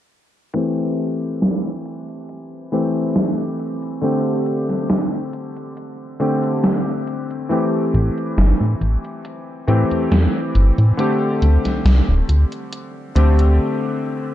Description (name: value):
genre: vaporwave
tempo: 69 BPM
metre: 4/4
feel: straight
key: A minor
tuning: A4 = 440 Hz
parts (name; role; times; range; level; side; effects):
- clear electric grand piano; accompaniment; 0.5-14.3 s; D3 to G4; -21 LUFS; left 1 dB; analog chorus, analog delay
- gated 80s digital drum machine; drums; 0.6-13.6 s; hi-hat, snare drum; -22 LUFS; right 1 dB; gated reverb, gated reverb snare, overdrive, low-pass filter on hats, vintage 12-bit sampler grit, low-pass filter on snare, low-pass filter on room
- chorused synth bass; bass; 7.9-13.6 s; D1 to A2; -14 LUFS; equal; none
room: digital ambience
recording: dark, warm production, low-pass filter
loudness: -16 LUFS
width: side -12 dB against mid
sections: 0.6-14.3 A section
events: filter sweep on drum 0.6-14.3; filter sweep 0.6-14.3; stop 13.6-14.3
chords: 0.6 Am7; 4.0 D7sus4; 7.5 Am7; 11.0 D7sus4